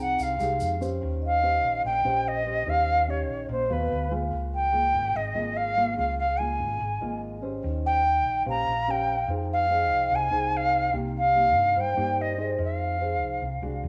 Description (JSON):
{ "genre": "bossa nova", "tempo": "145 BPM", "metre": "4/4", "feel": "straight", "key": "F minor", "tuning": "A4 = 440 Hz", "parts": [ { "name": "jazz flute", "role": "melody", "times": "0.0-13.8 s", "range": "B4 to Bb5", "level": "-27 LUFS", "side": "equal", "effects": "cassette tape" }, { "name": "nylon-string guitar", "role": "accompaniment", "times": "0.0-13.9 s", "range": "Ab2 to C5", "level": "-36 LUFS", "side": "equal", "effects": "none" }, { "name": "hollow-body short-scale fingered electric bass", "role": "bass", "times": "0.0-13.9 s", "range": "Ab1 to G2", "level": "-34 LUFS", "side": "equal", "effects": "none" }, { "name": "vibraphone with soft mallets", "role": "accompaniment", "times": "0.2-4.3, 7.0-12.6 s", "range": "C5 to G5", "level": "-37 LUFS", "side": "equal", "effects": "none" }, { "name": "tube shaker", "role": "percussion", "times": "0.2-1.0 s", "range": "none", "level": "-50 LUFS", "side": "equal", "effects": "none" } ], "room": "wet spring reverb, RT60 1.7 s, studio reverb", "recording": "home recording on cassette", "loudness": "-26 LUFS", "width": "mono", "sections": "0.0-1.0 A section; 1.0-13.9 B section", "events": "flute solo 0.0-1.0", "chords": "0.0 Fm7; 0.6 Fm9; 1.0 Eb13; 3.9 D6; 4.3 Db6; 7.6 Eb13; 9.3 Fm7; 10.9 Cm7; 12.6 Fm7", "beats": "0.19 0.60 | 1.01 1.43 1.84 2.25 | 2.67 3.08 3.49 3.91 | 4.32 4.74 5.15 5.56 | 5.98 6.39 6.80 7.22 | 7.63 8.04 8.46 8.87 | 9.28 9.70 10.11 10.53 | 10.94 11.35 11.76 12.18 | 12.59 13.00 13.42 13.83" }